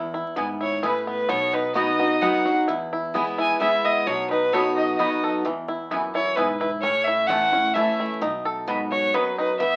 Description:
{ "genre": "bluegrass", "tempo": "130 BPM", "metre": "3/4", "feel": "straight", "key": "E major", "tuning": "A4 = 440 Hz", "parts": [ { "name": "picked steel-string acoustic guitar", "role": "accompaniment", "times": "0.0-9.8 s", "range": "E2 to F#4", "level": "-30 LUFS", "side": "equal", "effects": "none" }, { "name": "bluegrass banjo", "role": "arpeggios", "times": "0.0-9.8 s", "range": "E3 to A4", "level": "-30 LUFS", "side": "equal", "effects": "none" }, { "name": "upright bass", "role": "bass", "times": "0.0-9.8 s", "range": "G#1 to E2", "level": "-45 LUFS", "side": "equal", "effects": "none" }, { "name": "mandolin", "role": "stabs", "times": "0.4-9.2 s", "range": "A3 to B5", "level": "-30 LUFS", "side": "equal", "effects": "none" }, { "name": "clear fiddle", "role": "melody", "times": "0.6-9.8 s", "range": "B4 to G#5", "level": "-25 LUFS", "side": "equal", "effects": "none" } ], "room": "wet small room reverb, RT60 0.5 s", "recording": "very old 78 rpm record, vinyl crackle", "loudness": "-23 LUFS", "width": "mono", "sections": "0.0-9.8 A section", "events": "none", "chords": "0.0 E; 1.3 B; 2.7 E; 4.1 B; 5.4 E; 6.8 A; 8.2 B", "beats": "0.37 0.83 | 1.29 1.76 2.22 | 2.68 3.14 3.60 | 4.06 4.53 4.99 | 5.45 5.91 6.37 | 6.83 7.29 7.76 | 8.22 8.68 9.14 | 9.60" }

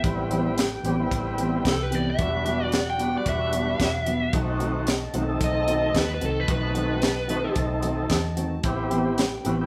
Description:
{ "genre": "straight-eighth soul blues", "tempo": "112 BPM", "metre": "4/4", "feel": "swing 55% on 16ths", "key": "unclear", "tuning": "A4 = 439 Hz", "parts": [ { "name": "biting lead guitar", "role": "melody", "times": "0.0-7.5 s", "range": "A4 to G5", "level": "-30 LUFS", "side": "equal", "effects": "overdrive" }, { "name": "tonewheel organ", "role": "accompaniment", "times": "0.0-9.7 s", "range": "G3 to A4", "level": "-32 LUFS", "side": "equal", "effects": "overdrive, slow rotary speaker" }, { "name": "clear horn section", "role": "sustained chords", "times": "0.0-9.7 s", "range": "F#4 to A5", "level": "-39 LUFS", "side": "equal", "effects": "none" }, { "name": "vintage muted fingered electric bass", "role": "bass", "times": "0.0-9.7 s", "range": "E1 to E2", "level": "-32 LUFS", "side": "equal", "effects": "none" }, { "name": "tight funk drum kit", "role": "drums", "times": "0.0-9.6 s", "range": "hi-hat, kick drum, snare drum", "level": "-29 LUFS", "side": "equal", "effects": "none" }, { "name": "mellow electric guitar", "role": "stabs", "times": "0.3-9.6 s", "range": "D#3 to G4", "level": "-32 LUFS", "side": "equal", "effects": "none" } ], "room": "moderate large studio reverb, RT60 0.8 s", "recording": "band playing live in one room", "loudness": "-25 LUFS", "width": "mono", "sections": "0.0-9.7 A section", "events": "none", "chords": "0.0 Am9; 2.2 Em9; 4.3 B7b9; 8.6 Am9", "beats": "| 0.04 0.57 1.11 1.65 | 2.19 2.73 3.26 3.80 | 4.34 4.88 5.41 5.95 | 6.49 7.03 7.57 8.11 | 8.64 9.18" }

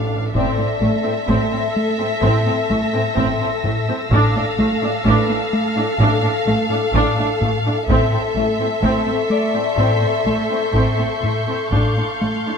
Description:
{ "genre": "cinematic, suspense film score", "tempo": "64 BPM", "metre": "4/4", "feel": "straight", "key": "unclear", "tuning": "A4 = 440 Hz", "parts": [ { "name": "muted symphonic violin section", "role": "melody", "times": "0.0-12.6 s", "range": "E5 to F5", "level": "-24 LUFS", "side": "left 2 dB", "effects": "none" }, { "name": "muted symphonic violin section", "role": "second line", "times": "0.0-12.6 s", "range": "A4", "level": "-23 LUFS", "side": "left 3 dB", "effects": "none" }, { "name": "muted symphonic viola section", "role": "accompaniment", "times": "0.0-12.6 s", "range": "A3 to D4", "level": "-24 LUFS", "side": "right 2 dB", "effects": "none" }, { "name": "rubbery square bass", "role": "riff", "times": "0.0-12.5 s", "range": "A2 to A3", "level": "-21 LUFS", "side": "left 1 dB", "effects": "none" }, { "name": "muted symphonic cello section", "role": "bass", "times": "0.0-12.6 s", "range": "A2", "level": "-26 LUFS", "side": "right 3 dB", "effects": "none" }, { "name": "muted symphonic double bass section", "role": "bass", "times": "0.0-12.3 s", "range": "A1", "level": "-25 LUFS", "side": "right 3 dB", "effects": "none" }, { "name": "taiko ensemble", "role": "drums", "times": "0.3-12.6 s", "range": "none", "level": "-27 LUFS", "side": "equal", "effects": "none" }, { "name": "muted symphonic violin section", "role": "texture", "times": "0.3-12.6 s", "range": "C6 to Bb6", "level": "-30 LUFS", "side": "left 1 dB", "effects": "none" }, { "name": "Celtic harp", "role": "texture", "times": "0.4-12.6 s", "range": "D4 to D5", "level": "-27 LUFS", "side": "left 11 dB", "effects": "none" } ], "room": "moderate scoring stage reverb, RT60 1.9 s", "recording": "none", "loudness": "-16 LUFS", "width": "side -6 dB against mid", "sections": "0.0-12.6 A section", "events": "none", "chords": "0.3 Am; 4.1 Dm/A; 7.9 Am; 11.7 Dm/A", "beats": "| 0.35 1.29 2.23 3.17 | 4.12 5.06 6.00 6.95 | 7.89 8.83 9.78 10.74 | 11.73" }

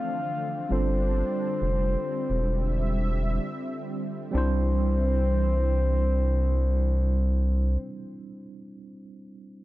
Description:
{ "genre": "R&B", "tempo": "66 BPM", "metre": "4/4", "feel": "straight", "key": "C major", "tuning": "A4 = 440 Hz", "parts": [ { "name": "soft octave-layered synth lead", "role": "melody", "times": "0.0-7.8 s", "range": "C5 to F5", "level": "-31 LUFS", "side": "left 2 dB", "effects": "chorus, tape echo" }, { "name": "tine electric piano", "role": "accompaniment", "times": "0.0-9.6 s", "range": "E3 to C5", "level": "-34 LUFS", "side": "right 2 dB", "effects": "medium stereo tremolo" }, { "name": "warm analog pad", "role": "sustained chords", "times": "0.0-7.8 s", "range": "C3 to E5", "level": "-33 LUFS", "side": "right 1 dB", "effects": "chorus" }, { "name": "round analog bass", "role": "bass", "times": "0.7-7.8 s", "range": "E1 to C2", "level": "-24 LUFS", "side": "equal", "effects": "none" } ], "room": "little or no reverb", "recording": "dark, warm production, nothing above 11.0 kHz", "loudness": "-23 LUFS", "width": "side -16 dB against mid", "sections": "0.0-4.3 A section; 4.3-8.0 B section", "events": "none", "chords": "0.0 Dm7; 0.7 G7sus4; 4.3 C", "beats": "| 0.70 1.61 2.52 3.43 | 4.34 5.25 6.16 7.07" }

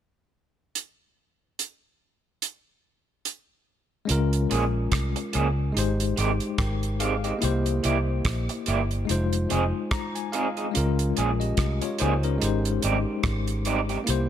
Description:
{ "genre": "lovers rock reggae", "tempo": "72 BPM", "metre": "4/4", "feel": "swing 58% on 16ths", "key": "unclear", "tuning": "A4 = 440 Hz", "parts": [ { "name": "damped 70s drum kit", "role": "drums", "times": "0.8-14.3 s", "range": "hi-hat, kick drum, rim click", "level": "-29 LUFS", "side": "right 2 dB", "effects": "dub echo" }, { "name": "bell-like tine electric piano", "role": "accompaniment", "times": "4.1-14.3 s", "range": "Ab3 to Bb5", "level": "-28 LUFS", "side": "left 4 dB", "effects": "medium stereo tremolo, dub echo" }, { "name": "vintage muted fingered electric bass", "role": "bass", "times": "4.1-14.3 s", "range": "F1 to Db2", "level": "-26 LUFS", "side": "equal", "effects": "none" }, { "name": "electric guitar through a small old amp", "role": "stabs", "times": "4.5-14.0 s", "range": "Eb3 to Ab4", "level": "-29 LUFS", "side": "right 5 dB", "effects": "tremolo" } ], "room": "small room ambience", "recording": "none", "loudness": "-23 LUFS", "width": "side -10 dB against mid", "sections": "0.8-4.1 A section; 4.1-14.3 B section", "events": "tine electric piano fill 9.5-10.7", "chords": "0.8 N.C.; 4.1 Db6; 5.8 Abmaj7; 7.4 C7; 9.1 Fm7; 10.7 Db6; 12.4 Abmaj7", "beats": "| 0.75 1.59 2.42 3.25 | 4.09 4.92 5.75 6.58 | 7.42 8.25 9.08 9.91 | 10.74 11.58 12.41 13.24 | 14.07" }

